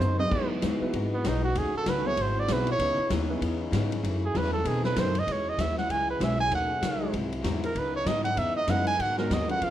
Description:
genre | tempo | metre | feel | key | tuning
jazz, big band swing | 194 BPM | 4/4 | swing 61% on 8ths | C# minor, E major from 5.3 s | A4 = 440 Hz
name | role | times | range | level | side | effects
clear trumpet | melody | 0.0-9.7 s | B3 to G#5 | -28 LUFS | right 2 dB | none
picked steel-string acoustic guitar | accompaniment | 0.0-9.7 s | F#2 to A4 | -35 LUFS | left 3 dB | none
clear trombone section | sustained chords | 0.0-9.7 s | C3 to F#4 | -36 LUFS | left 2 dB | none
upright bass | bass | 0.0-9.7 s | G#1 to B2 | -31 LUFS | equal | none
swinging big-band drum kit | drums | 0.0-9.7 s | crash cymbal, hi-hat, kick drum, ride cymbal, snare drum, toms | -33 LUFS | left 1 dB | none
warm grand piano | accompaniment | 0.3-9.6 s | G#3 to C#5 | -35 LUFS | right 2 dB | none
room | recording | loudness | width
moderate large studio reverb, RT60 1.3 s | worn, warbling old tape, cassette tape, warbly pitch drift | -25 LUFS | side -12 dB against mid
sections
0.0-5.3 A section; 5.3-9.7 A section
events
trumpet solo 0.0-9.7; drum fill 0.0-0.3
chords
0.3 Emaj9; 1.6 D#m7b5; 2.2 G#7alt; 2.8 C#m9; 4.0 F#m7; 4.7 B7b9; 5.3 E69; 6.5 D#m7b5; 7.1 G#7b13; 7.8 C#m9; 9.0 G#m7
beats
0.00 | 0.31 0.62 0.93 1.24 | 1.55 1.86 2.17 2.48 | 2.79 3.10 3.41 3.72 | 4.03 4.34 4.65 4.96 | 5.27 5.58 5.89 6.20 | 6.51 6.82 7.13 7.44 | 7.75 8.06 8.37 8.68 | 8.99 9.30 9.61

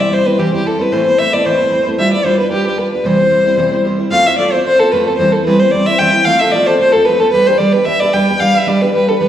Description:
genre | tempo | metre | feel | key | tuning
celtic folk | 224 BPM | 4/4 | swing 54% on 8ths | C major | A4 = 442 Hz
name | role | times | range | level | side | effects
dark violin | melody | 0.0-9.3 s | G4 to G5 | -12 LUFS | left 1 dB | slapback echo
picked steel-string acoustic guitar | accompaniment | 0.0-9.3 s | A2 to C5 | -16 LUFS | right 1 dB | none
room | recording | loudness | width
wet recital hall reverb, RT60 1.6 s | heard from further back in the room | -10 LUFS | side -10 dB against mid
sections
0.0-4.1 A section; 4.1-9.3 B section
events
none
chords
0.0 C; 0.9 Amadd9; 2.0 G7; 3.1 C; 4.1 F; 5.2 C/E; 6.3 F; 7.3 G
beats
0.12 0.38 0.65 | 0.92 1.18 1.45 1.72 | 1.98 2.25 2.52 2.79 | 3.05 3.32 3.59 3.86 | 4.12 4.39 4.66 4.93 | 5.19 5.46 5.73 6.00 | 6.26 6.53 6.80 7.07 | 7.33 7.60 7.87 8.13 | 8.40 8.67 8.94 9.20

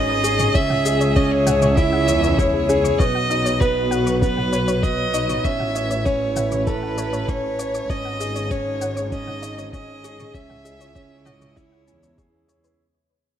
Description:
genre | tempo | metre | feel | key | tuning
piano and strings electronica | 98 BPM | 4/4 | straight | C# minor | A4 = 440 Hz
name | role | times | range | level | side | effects
warm violin | melody | 0.0-12.2 s | B4 to E5 | -24 LUFS | equal | none
muted string quartet | sustained chords | 0.0-12.8 s | G#3 to E5 | -29 LUFS | right 1 dB | sidechain pumping
clear concert grand piano | riff | 0.0-12.8 s | B3 to E5 | -24 LUFS | right 1 dB | none
dark chamber double bass section | bass | 0.0-12.7 s | G#1 to E2 | -24 LUFS | equal | tube saturation, sidechain pumping
soft round pluck | arpeggios | 0.2-12.7 s | C#4 to C#6 | -32 LUFS | left 3 dB | chorus, sidechain pumping, digital delay
electronic shaker and toms | drums | 0.2-12.8 s | none | -30 LUFS | equal | overdrive
electronic kick drum | drums | 0.6-12.3 s | none | -22 LUFS | left 1 dB | none
room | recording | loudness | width
light reverb, small room ambience | none | -18 LUFS | side -10 dB against mid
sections
0.0-12.8 A section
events
drop 0.0-12.8; fade-out 3.0-12.8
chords
0.0 G#sus4; 0.6 C#m; 3.0 Badd9; 5.4 A; 7.9 G#sus4; 10.3 C#m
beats
| 0.55 1.16 1.78 2.39 | 3.00 3.61 4.22 4.84 | 5.45 6.06 6.67 7.29 | 7.90 8.51 9.12 9.73 | 10.35 10.96 11.57 12.18

